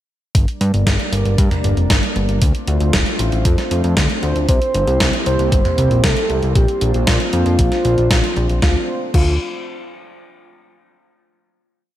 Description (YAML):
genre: synthwave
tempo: 116 BPM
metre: 4/4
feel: straight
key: D minor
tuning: A4 = 441 Hz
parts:
  - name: warm analog pad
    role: sustained chords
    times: 0.3-8.9 s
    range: G3 to D5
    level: -24 LUFS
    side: equal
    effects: chorus, sidechain pumping
  - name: fat analog bass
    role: bass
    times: 0.3-9.4 s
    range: D1 to Bb2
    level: -17 LUFS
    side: equal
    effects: none
  - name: electronic kick drum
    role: drums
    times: 0.3-9.2 s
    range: none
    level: -17 LUFS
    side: equal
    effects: none
  - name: gated 80s digital drum machine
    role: drums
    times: 0.3-9.2 s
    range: crash cymbal, hi-hat, snare drum, toms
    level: -21 LUFS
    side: equal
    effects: gated reverb, gated reverb snare
  - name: soft octave-layered synth lead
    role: melody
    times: 4.5-9.3 s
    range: F4 to C5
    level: -21 LUFS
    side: equal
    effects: chorus, ping-pong delay
room: light reverb, digital ambience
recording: none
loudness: -14 LUFS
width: side -13 dB against mid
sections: 0.3-8.6 verse; 8.6-10.7 final chord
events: none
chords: 0.3 Gm; 2.4 Dm7; 4.5 C7; 6.6 Bbadd9; 8.6 Dm7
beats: | 0.35 0.87 1.38 1.90 | 2.42 2.94 3.45 3.97 | 4.49 5.00 5.52 6.04 | 6.56 7.07 7.59 8.11 | 8.62 9.14